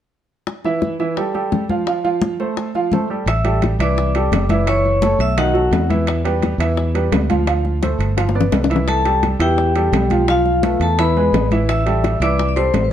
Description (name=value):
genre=latin, salsa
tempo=171 BPM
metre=4/4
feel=straight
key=A minor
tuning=A4 = 439 Hz
part: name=bongos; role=percussion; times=0.5-12.9 s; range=none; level=-25 LUFS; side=left 6 dB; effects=none
part: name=congas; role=percussion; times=0.5-12.9 s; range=none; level=-24 LUFS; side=left 3 dB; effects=none
part: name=bright baby grand piano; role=accompaniment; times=0.6-12.9 s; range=D#3 to F5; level=-20 LUFS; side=right 4 dB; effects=none
part: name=vibraphone with hard mallets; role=melody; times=3.3-5.9, 8.9-12.9 s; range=F4 to E6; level=-19 LUFS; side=left 3 dB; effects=plate reverb
part: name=fretless electric bass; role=bass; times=3.3-12.9 s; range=F#1 to E2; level=-19 LUFS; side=equal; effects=none
part: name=timbales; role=percussion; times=3.3-12.9 s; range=none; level=-28 LUFS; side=right 5 dB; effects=none
room=light reverb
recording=dark, warm production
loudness=-15 LUFS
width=side -10 dB against mid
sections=0.5-3.3 A section; 3.3-12.9 B section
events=drum fill 8.2-8.9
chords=0.5 A5; 1.9 Fadd9; 3.3 Am7; 4.7 F#m7; 5.4 B7; 6.1 Em7; 7.5 Dm7; 8.2 G7; 8.9 C6; 10.3 Fmaj7#11/B; 11.0 E; 11.7 Am7